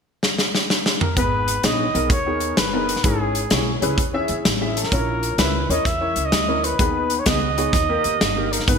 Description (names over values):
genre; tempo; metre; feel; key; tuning
uptempo gospel; 128 BPM; 4/4; swing 66% on 8ths; G# minor; A4 = 440 Hz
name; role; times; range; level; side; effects
modern studio drum kit; drums; 0.2-8.8 s; hi-hat, kick drum, snare drum, toms; -20 LUFS; equal; gated reverb
dark trumpet; melody; 1.0-8.8 s; G#4 to E5; -23 LUFS; right 1 dB; none
warm baby grand piano; accompaniment; 1.2-8.8 s; G#2 to E5; -24 LUFS; left 2 dB; analog chorus
upright bass; bass; 1.2-8.8 s; G1 to E2; -26 LUFS; right 1 dB; none
room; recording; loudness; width
moderate lush hall reverb, RT60 1.8 s, studio ambience; bright 1980s-style digital production; -18 LUFS; side -6 dB against mid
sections
0.0-1.2 A section; 1.2-8.8 B section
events
drum fill 0.2-1.2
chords
0.0 N.C.; 1.2 G#m; 3.0 C#m/G#; 4.9 A#dim; 6.8 G#m/D#; 7.7 D#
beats
0.22 0.69 | 1.16 1.63 2.10 2.57 | 3.04 3.51 3.98 4.45 | 4.92 5.39 5.86 6.33 | 6.79 7.26 7.73 8.20 | 8.67